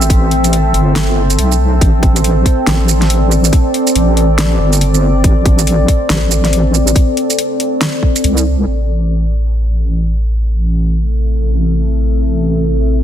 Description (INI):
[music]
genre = deep dubstep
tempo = 140 BPM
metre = 4/4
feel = swing 61% on 16ths, half-time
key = A minor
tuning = A4 = 440 Hz
[part]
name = deep dark ambient pad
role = sustained chords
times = 0.0-13.0 s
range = C4 to E5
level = -17 LUFS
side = equal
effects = chorus, built-in reverb
[part]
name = deep soft wobble bass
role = bass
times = 0.0-13.0 s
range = G1 to C2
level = -12 LUFS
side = equal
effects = chorus, tube saturation
[part]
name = deep house drum kit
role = drums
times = 0.0-8.4 s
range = hi-hat, shaker, snare drum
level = -17 LUFS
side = right 1 dB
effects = overdrive
[part]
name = electronic kick drum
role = drums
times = 0.1-8.1 s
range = none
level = -11 LUFS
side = equal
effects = none
[sound]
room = light reverb, digital ambience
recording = dense, heavily limited modern master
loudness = -10 LUFS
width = side -10 dB against mid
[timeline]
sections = 0.0-8.7 A section; 8.7-13.0 B section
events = drop 0.0-8.7; filter sweep on ambient pad 8.7-13.0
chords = 0.0 Am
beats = | 0.10 0.53 0.96 1.38 | 1.81 2.24 2.67 3.10 | 3.53 3.96 4.38 4.81 | 5.24 5.67 6.10 6.53 | 6.96 7.38 7.81 8.24 | 8.67 9.10 9.53 9.96 | 10.38 10.81 11.24 11.67 | 12.10 12.53 12.96